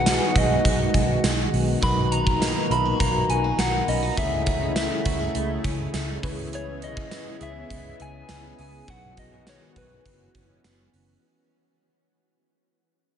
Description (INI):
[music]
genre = 1980s-style pop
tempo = 102 BPM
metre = 4/4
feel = straight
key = B major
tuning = A4 = 440 Hz
[part]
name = soft struck synth lead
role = melody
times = 0.0-10.9 s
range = B4 to B5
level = -27 LUFS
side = equal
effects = chorus, tape echo
[part]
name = bell-like tine electric piano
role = accompaniment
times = 0.0-11.3 s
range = A3 to E5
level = -31 LUFS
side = left 3 dB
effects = ensemble chorus
[part]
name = phased analog pad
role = sustained chords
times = 0.0-11.2 s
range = A#2 to G#4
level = -30 LUFS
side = equal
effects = phaser, chorus
[part]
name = vintage muted picked electric bass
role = bass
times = 0.0-11.2 s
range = F#1 to C#2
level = -28 LUFS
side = equal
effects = none
[part]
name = gated 80s drum kit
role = drums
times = 0.1-11.1 s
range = hi-hat, kick drum, snare drum, tambourine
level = -26 LUFS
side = right 1 dB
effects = none
[part]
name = direct-recorded clean electric guitar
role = riff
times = 1.8-11.8 s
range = E3 to G#4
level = -36 LUFS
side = right 6 dB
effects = wide subtle chorus, tape echo
[sound]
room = wet huge ambient reverb, RT60 8.4 s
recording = dreamy mix soaked in reverb, nothing above 10.6 kHz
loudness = -21 LUFS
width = side -8 dB against mid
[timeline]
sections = 0.0-11.2 A section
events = fade-out 0.0-11.2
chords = 0.0 G#m7/B; 1.8 Bmaj7; 4.2 Amaj7/C#; 6.2 C#m7; 8.9 G#m7/B; 10.1 F#7sus4